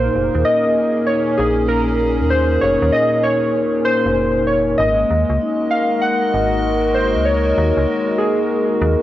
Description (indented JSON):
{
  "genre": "IDM",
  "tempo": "97 BPM",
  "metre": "4/4",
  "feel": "swing 62% on 16ths",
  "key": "Bb minor",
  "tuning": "A4 = 443 Hz",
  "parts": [
    { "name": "warbly lo-fi synth keys", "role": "melody", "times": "0.0-9.0 s", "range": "Ab4 to Gb5", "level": "-18 LUFS", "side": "equal", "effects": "chorus, cassette tape, analog delay" },
    { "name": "hollow soft pad", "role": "sustained chords", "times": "0.0-9.0 s", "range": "Bb2 to Eb5", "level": "-23 LUFS", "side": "right 1 dB", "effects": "chorus" },
    { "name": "vibraphone with soft mallets", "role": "arpeggios", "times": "0.0-9.0 s", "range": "Bb3 to Bb4", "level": "-20 LUFS", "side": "left 2 dB", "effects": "analog delay" },
    { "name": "metallic FM bass", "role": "bass", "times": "0.0-9.0 s", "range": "F1 to Eb2", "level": "-21 LUFS", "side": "equal", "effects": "tube saturation" }
  ],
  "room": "moderate studio reverb, RT60 0.6 s",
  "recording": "home recording on cassette",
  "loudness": "-14 LUFS",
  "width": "side -14 dB against mid",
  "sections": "0.0-9.0 A section",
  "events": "none",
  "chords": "0.0 Bbm11; 4.8 Ab9sus4"
}